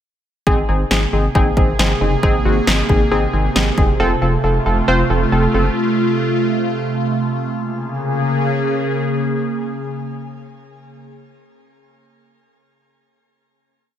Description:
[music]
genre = synth-pop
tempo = 136 BPM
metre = 4/4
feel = straight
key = Bb minor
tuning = A4 = 436 Hz
[part]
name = warm analog keys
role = accompaniment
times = 0.5-5.7 s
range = C4 to C5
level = -19 LUFS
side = equal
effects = chorus, shimmer reverb
[part]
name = phased analog pad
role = sustained chords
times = 1.0-11.0 s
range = C3 to Ab4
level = -19 LUFS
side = equal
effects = phaser, chorus
[part]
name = rubbery square bass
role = bass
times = 0.5-5.7 s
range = F1 to Ab1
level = -19 LUFS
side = equal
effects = none
[part]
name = punchy analog drum machine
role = drums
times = 0.5-3.9 s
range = kick drum, snare drum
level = -18 LUFS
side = equal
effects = none
[sound]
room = light reverb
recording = none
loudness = -15 LUFS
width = side -10 dB against mid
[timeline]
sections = 0.5-7.5 pre-chorus; 7.5-11.1 final chord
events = none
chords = 0.5 Abadd9; 4.0 F; 7.5 Bbm7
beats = | 0.47 0.91 1.35 1.79 | 2.23 2.67 3.12 3.56 | 4.00 4.44 4.88 5.32 | 5.76 6.20 6.64 7.09 | 7.53 7.97 8.41 8.85 | 9.29 9.73 10.17 10.62

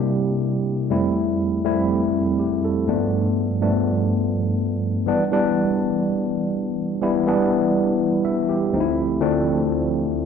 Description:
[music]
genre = disco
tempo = 123 BPM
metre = 4/4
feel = straight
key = unclear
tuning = A4 = 442 Hz
[part]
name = tine electric piano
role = solo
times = 0.0-10.3 s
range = D2 to E5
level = -19 LUFS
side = equal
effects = slow stereo tremolo
[sound]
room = wet stone room reverb, RT60 1.3 s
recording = band playing live in one room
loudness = -19 LUFS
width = side -7 dB against mid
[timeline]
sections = 0.0-5.1 A section; 5.1-10.3 B section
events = none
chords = 0.0 C7; 0.9 Fmaj9; 2.9 G7; 5.1 Em7; 8.7 Dm7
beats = 0.17 0.66 | 1.15 1.64 2.13 2.62 | 3.12 3.60 4.09 4.58 | 5.07 5.56 6.05 6.54 | 7.02 7.51 8.00 8.48 | 8.97 9.46 9.94

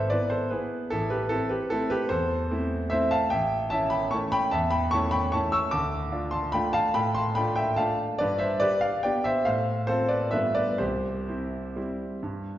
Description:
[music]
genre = classical, piano waltz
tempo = 123-160 BPM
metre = 3/4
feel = rubato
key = unclear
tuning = A4 = 440 Hz
[part]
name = clear concert grand piano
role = solo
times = 0.0-12.6 s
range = G#1 to E6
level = -24 LUFS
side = equal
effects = none
[sound]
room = wet recital hall reverb, RT60 1.7 s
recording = heard from further back in the room, nothing above 7.5 kHz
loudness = -24 LUFS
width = side -13 dB against mid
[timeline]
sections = 0.0-12.6 A section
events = none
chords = 0.0 E/G#; 0.9 Am; 3.3 A7; 5.7 Dm; 8.2 G; 9.5 F/A; 10.3 G13; 10.8 C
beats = 0.12 0.52 | 0.92 1.32 1.72 | 2.11 2.51 2.92 | 3.32 3.72 4.13 | 4.53 4.93 5.34 | 5.73 6.12 6.54 | 6.96 7.37 7.79 | 8.20 8.62 9.05 | 9.47 9.89 10.33 | 10.80 11.28 11.76 | 12.23

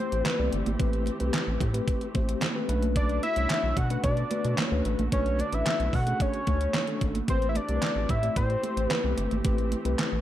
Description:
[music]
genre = early-eighties boogie funk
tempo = 111 BPM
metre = 4/4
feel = straight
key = A dorian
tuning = A4 = 439 Hz
[part]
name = fat analog lead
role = melody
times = 0.0-9.1 s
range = C5 to F#5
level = -29 LUFS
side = equal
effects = chorus, slapback echo
[part]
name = mellow tine electric piano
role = accompaniment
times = 0.0-10.2 s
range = A3 to D5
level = -32 LUFS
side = left 4 dB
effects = medium stereo tremolo
[part]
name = muted studio string section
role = sustained chords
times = 0.0-10.2 s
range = D3 to G4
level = -39 LUFS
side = right 1 dB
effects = none
[part]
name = rubbery square bass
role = bass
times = 0.1-10.2 s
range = G1 to B2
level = -29 LUFS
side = equal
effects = none
[part]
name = detuned 8-bit digital drum machine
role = drums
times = 0.1-10.1 s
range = handclaps, hi-hat, kick drum, snare drum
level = -30 LUFS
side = equal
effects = overdrive, gated reverb
[part]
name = congas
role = percussion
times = 0.2-10.1 s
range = none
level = -36 LUFS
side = right 6 dB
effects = none
[sound]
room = light reverb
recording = none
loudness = -24 LUFS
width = side -12 dB against mid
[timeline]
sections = 0.0-10.2 A section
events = none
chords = 0.0 Am9; 2.7 Bm9; 7.3 Am9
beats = 0.26 | 0.80 1.34 1.88 2.42 | 2.96 3.50 4.04 4.58 | 5.12 5.66 6.20 6.74 | 7.28 7.82 8.36 8.90 | 9.45 9.98

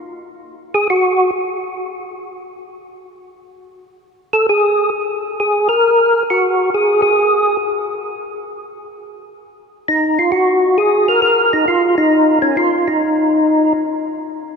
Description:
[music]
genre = jazz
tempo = 134 BPM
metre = 4/4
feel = swing 68% on 8ths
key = Eb minor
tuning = A4 = 440 Hz
[part]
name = percussive tonewheel organ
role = solo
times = 0.7-1.3, 4.3-13.7 s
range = Db4 to Bb4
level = -14 LUFS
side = equal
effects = slow rotary speaker, chorus vibrato
[sound]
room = wet cathedral reverb, RT60 4.7 s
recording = recorded in a church or concert hall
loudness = -13 LUFS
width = side -5 dB against mid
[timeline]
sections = 0.0-9.4 A section; 9.4-14.6 B section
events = tonewheel organ solo 0.0-9.4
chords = none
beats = | 0.42 0.87 1.32 1.77 | 2.22 2.67 3.12 3.57 | 4.02 4.46 4.91 5.36 | 5.81 6.26 6.71 7.16 | 7.61 8.06 8.51 8.96 | 9.40 9.86 10.30 10.76 | 11.21 11.65 12.11 12.55 | 13.01 13.46

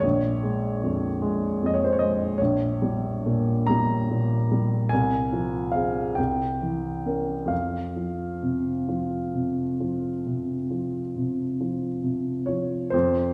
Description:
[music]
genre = classical, romantic nocturne for solo piano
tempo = 43-53 BPM (dotted quarters)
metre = 12/8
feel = rubato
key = F minor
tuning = A4 = 441 Hz
[part]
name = warm upright piano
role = solo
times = 0.0-13.3 s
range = Bb1 to Bb5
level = -26 LUFS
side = equal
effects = none
[sound]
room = wet recital hall reverb, RT60 1.4 s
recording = heard from further back in the room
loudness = -26 LUFS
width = mono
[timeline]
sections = 0.0-12.9 A section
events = none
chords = 0.0 Bbm7; 2.4 Gdim/Bb; 4.9 Fm/C; 6.2 C7b9; 7.5 F5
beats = 0.04 1.24 | 2.39 3.67 4.91 6.17 | 7.51 8.88 10.26 11.61 | 12.93

